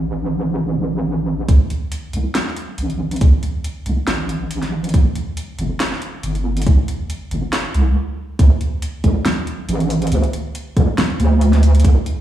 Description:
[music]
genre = deep dubstep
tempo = 139 BPM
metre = 4/4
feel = swing 54% on 16ths, half-time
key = unclear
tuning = A4 = 440 Hz
[part]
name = wobble bass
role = bass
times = 0.0-12.0 s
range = G1 to D2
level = -16 LUFS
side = right 1 dB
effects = chorus
[part]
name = deep house drum kit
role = drums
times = 1.5-12.2 s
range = hi-hat, snare drum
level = -23 LUFS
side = equal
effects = high-pass filter on hats, low-pass filter on hats, studio reverb, high-pass filter on snare, low-pass filter on snare
[part]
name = electronic kick drum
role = drums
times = 1.5-11.9 s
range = none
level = -13 LUFS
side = equal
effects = studio reverb
[sound]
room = digital ambience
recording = played on a big sound system in a bare room, large studio reverb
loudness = -16 LUFS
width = side -12 dB against mid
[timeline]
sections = 0.0-1.5 A section; 1.5-8.4 B section; 8.4-12.2 C section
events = filter sweep 0.0-1.5; build-up 1.5-8.4; stop 8.0-8.4; drop 8.4-12.2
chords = none

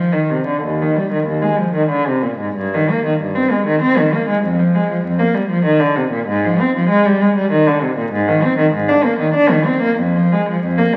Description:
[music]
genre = classical, baroque-style suite movement for unaccompanied cello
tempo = 96 BPM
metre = 3/4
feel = uneven beats, rubato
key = unclear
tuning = A4 = 437 Hz
[part]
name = warm cello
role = solo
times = 0.0-11.0 s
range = Eb2 to D4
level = -16 LUFS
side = equal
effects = none
[sound]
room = wet recital hall reverb, RT60 1.5 s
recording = very old 78 rpm record, vinyl crackle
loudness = -16 LUFS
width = mono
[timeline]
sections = 0.6-11.0 A section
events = none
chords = none

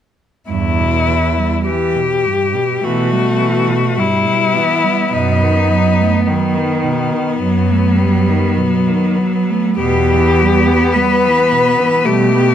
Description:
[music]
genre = classical, lyrical piece for cello ensemble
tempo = 46-55 BPM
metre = 4/4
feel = rubato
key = E minor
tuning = A4 = 440 Hz
[part]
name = clear cello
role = melody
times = 0.5-12.5 s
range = B3 to B4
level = -16 LUFS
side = left 6 dB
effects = none
[part]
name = clear cello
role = second line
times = 0.5-12.5 s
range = G2 to B3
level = -19 LUFS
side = right 8 dB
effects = none
[part]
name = rich cello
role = bass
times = 0.5-12.5 s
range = E2 to B2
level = -18 LUFS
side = right 2 dB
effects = none
[part]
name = rich cello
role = accompaniment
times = 2.8-12.5 s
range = D#3 to B3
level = -18 LUFS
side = left 1 dB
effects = none
[sound]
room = moderate recital hall reverb, RT60 1.7 s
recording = close, detailed microphones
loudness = -12 LUFS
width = side -9 dB against mid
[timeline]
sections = 0.5-12.5 A section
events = none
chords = 0.5 Em; 5.1 B/F#; 9.8 Em

